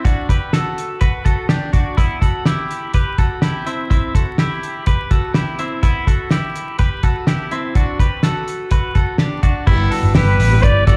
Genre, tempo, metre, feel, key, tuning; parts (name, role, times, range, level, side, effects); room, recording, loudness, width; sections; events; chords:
jangly indie pop; 125 BPM; 4/4; straight; G major; A4 = 440 Hz
twelve-string electric guitar; arpeggios; 0.0-11.0 s; B3 to B4; -24 LUFS; equal; slapback echo
cloth-damped thuddy drum kit; drums; 0.1-11.0 s; crash cymbal, hi-hat, kick drum, snare drum; -18 LUFS; equal
fingerpicked plugged-in steel-string acoustic guitar; accompaniment; 9.7-11.0 s; E3 to G4; -26 LUFS; equal; slapback echo
vintage muted picked electric bass; bass; 9.7-11.0 s; G1 to A1; -16 LUFS; equal
breathy trumpet; melody; 10.2-11.0 s; B4 to D5; -20 LUFS; equal; slapback echo
light reverb, studio ambience; live gig heard through the venue's PA, club reverb, vinyl crackle; -17 LUFS; mono
0.0-9.7 A section; 9.7-11.0 B section
0.1 Bm; 2.0 G6; 3.9 Am7; 5.8 Em; 7.8 Bm; 9.7 G6